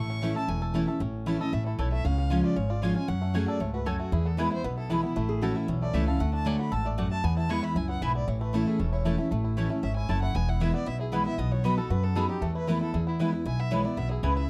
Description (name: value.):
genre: bluegrass.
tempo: 231 BPM.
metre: 4/4.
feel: straight.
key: A major.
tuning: A4 = 441 Hz.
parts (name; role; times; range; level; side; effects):
bluegrass banjo; melody; 0.0-14.5 s; E3 to A4; -41 LUFS; equal; none.
warm fiddle; melody; 0.0-14.5 s; E4 to C#6; -39 LUFS; equal; none.
picked steel-string acoustic guitar; accompaniment; 0.0-14.5 s; E2 to G#4; -32 LUFS; equal; none.
upright bass; bass; 0.0-14.4 s; E1 to F#2; -32 LUFS; equal; none.
mandolin; stabs; 0.2-14.3 s; A3 to B5; -37 LUFS; equal; slapback echo.
lap resonator guitar; second line; 5.3-5.7 s; E4 to G#4; -37 LUFS; equal; none.
room: light reverb.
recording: dry, close 1970s-style studio recording.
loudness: -28 LUFS.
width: mono.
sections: 0.0-1.0 A section; 1.0-9.3 B section; 9.3-14.5 C section.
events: fiddle solo 9.3-14.5.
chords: 0.0 A; 2.0 C#; 3.1 F#madd9; 4.1 E; 5.2 A; 6.2 D; 7.2 E; 8.3 A; 10.3 E; 11.4 B; 12.4 Esus4; 12.9 E.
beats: 0.23 0.49 0.75 | 1.01 1.27 1.53 1.79 | 2.05 2.31 2.57 2.83 | 3.09 3.35 3.61 3.87 | 4.13 4.39 4.65 4.91 | 5.17 5.42 5.68 5.94 | 6.20 6.46 6.72 6.98 | 7.24 7.50 7.76 8.02 | 8.28 8.54 8.80 9.05 | 9.31 9.57 9.83 10.09 | 10.35 10.61 10.87 11.13 | 11.39 11.64 11.90 12.16 | 12.42 12.68 12.94 13.20 | 13.46 13.71 13.97 14.23 | 14.49.